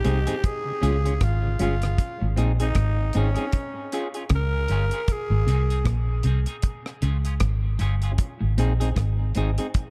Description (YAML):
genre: dub reggae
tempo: 77 BPM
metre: 4/4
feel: swing 58% on 16ths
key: Ab major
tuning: A4 = 440 Hz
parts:
  - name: growling tenor saxophone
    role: melody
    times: 0.0-5.9 s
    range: Db4 to Bb4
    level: -33 LUFS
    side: equal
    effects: dub echo
  - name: mellow tonewheel organ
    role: accompaniment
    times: 0.0-1.9 s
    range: Ab2 to F4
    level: -37 LUFS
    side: equal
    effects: none
  - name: semi-hollow electric guitar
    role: accompaniment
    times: 0.0-9.7 s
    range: C4 to Ab4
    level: -34 LUFS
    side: equal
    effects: spring reverb, high-pass filter, dub echo
  - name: clean electric guitar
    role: riff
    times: 0.0-9.5 s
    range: G2 to Db3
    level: -33 LUFS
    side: equal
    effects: none
  - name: deep reggae drum kit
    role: drums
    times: 0.0-9.9 s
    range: hi-hat, kick drum, rim click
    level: -28 LUFS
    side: equal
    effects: none
  - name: vintage muted fingered electric bass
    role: bass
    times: 0.1-9.6 s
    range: G1 to Db2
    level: -25 LUFS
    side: equal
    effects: none
room: small room reverb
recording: dark, warm production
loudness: -24 LUFS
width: mono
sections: 0.0-9.9 A section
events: filter sweep on clean electric guitar 2.0-8.2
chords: 0.4 Db; 2.0 Ab; 3.5 Db; 5.1 Ab; 6.6 Db; 8.2 Ab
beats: 0.43 1.21 | 1.98 2.76 3.53 4.31 | 5.08 5.86 6.63 7.41 | 8.19 8.96 9.74